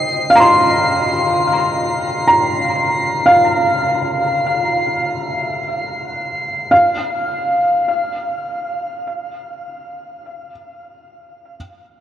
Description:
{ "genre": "ambient", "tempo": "free time", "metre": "none", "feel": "none", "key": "unclear", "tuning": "A4 = 438 Hz", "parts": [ { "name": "felt-muted upright piano", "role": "arpeggios", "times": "0.0-11.6 s", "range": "Eb5 to C6", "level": "-15 LUFS", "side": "equal", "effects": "ping-pong delay, shimmer reverb" }, { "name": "drifting glass-harmonics texture", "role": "texture", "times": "0.0-6.7 s", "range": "C7", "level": "-23 LUFS", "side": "equal", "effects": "chorus, built-in reverb, shimmer reverb" } ], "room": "wet huge ambient reverb, RT60 9.3 s", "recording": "worn, warbling old tape, cassette tape, warbly pitch drift", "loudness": "-14 LUFS", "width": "side -11 dB against mid", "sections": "0.0-6.7 A section; 6.7-9.1 B section", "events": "none", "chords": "0.0 Cm; 6.7 N.C." }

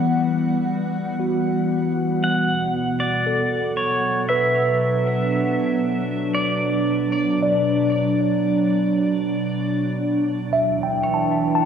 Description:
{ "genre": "ambient", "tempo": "58 BPM", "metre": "4/4", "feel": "straight", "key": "unclear", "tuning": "A4 = 440 Hz", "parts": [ { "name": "pedal steel guitar", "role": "melody", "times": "0.0-11.7 s", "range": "F#4 to F#5", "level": "-26 LUFS", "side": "equal", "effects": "tape echo" }, { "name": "glassy FM pad", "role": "sustained chords", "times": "0.0-11.7 s", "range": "B2 to F#5", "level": "-21 LUFS", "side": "equal", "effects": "ensemble chorus, built-in reverb" }, { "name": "mellow tine electric piano", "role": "arpeggios", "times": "0.0-11.7 s", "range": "F#4 to A5", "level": "-24 LUFS", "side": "equal", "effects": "medium stereo tremolo, tape echo" }, { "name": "bowed-like drone", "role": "drone", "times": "10.8-11.7 s", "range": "E3", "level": "-29 LUFS", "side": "equal", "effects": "built-in reverb" } ], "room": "wet spring reverb, RT60 2.3 s", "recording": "echo-heavy mix", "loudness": "-19 LUFS", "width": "side -7 dB against mid", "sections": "0.0-10.5 A section; 10.5-11.7 A section", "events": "fade-in on tine electric piano 0.0-10.5; fade-in on pedal steel guitar 0.0-10.5", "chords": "0.0 Emadd9; 2.2 Bm7; 10.5 Em7" }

